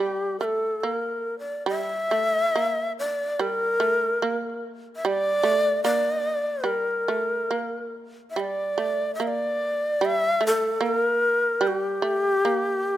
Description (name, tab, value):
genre	japanese traditional, Japanese chamber music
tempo	68-76 BPM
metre	2/4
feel	rubato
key	G kumoi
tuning	A4 = 440 Hz
part	breathy bright long shakuhachi	melody	0.0-13.0 s	G4 to E5	-23 LUFS	left 1 dB	none
part	shamisen	second line	0.0-13.0 s	G3 to Bb3	-29 LUFS	right 5 dB	none
room	light reverb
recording	close, detailed microphones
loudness	-22 LUFS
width	side -13 dB against mid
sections	0.0-1.7 A section; 1.7-13.0 B section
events	none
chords	none